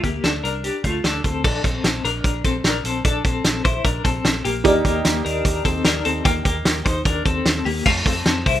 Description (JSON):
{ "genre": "jangly indie pop", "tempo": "150 BPM", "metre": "4/4", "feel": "straight", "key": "unclear", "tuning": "A4 = 441 Hz", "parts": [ { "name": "twelve-string electric guitar", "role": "arpeggios", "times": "0.0-8.6 s", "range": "A3 to C5", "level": "-22 LUFS", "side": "left 4 dB", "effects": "tremolo" }, { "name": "vintage muted fingered electric bass", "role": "bass", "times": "0.0-8.6 s", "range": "Bb1 to F2", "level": "-27 LUFS", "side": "right 1 dB", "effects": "none" }, { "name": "loose indie drum kit", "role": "drums", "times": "0.0-8.6 s", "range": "crash cymbal, hi-hat, kick drum, snare drum", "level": "-20 LUFS", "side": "right 1 dB", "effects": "none" }, { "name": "dark upright piano", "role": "accompaniment", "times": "4.6-7.9 s", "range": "Eb4 to D5", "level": "-23 LUFS", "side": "right 4 dB", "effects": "none" } ], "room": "light reverb", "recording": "rough home demo mix", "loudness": "-18 LUFS", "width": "side -12 dB against mid", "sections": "0.0-1.4 A section; 1.4-7.9 B section", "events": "none", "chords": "0.0 Dm; 1.4 Bbmaj7; 4.7 Ebmaj7; 7.9 Fmaj7", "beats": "0.24 0.64 1.04 | 1.44 1.84 2.25 2.65 | 3.05 3.45 3.85 4.25 | 4.65 5.05 5.45 5.85 | 6.25 6.66 7.06 7.46 | 7.86 8.26" }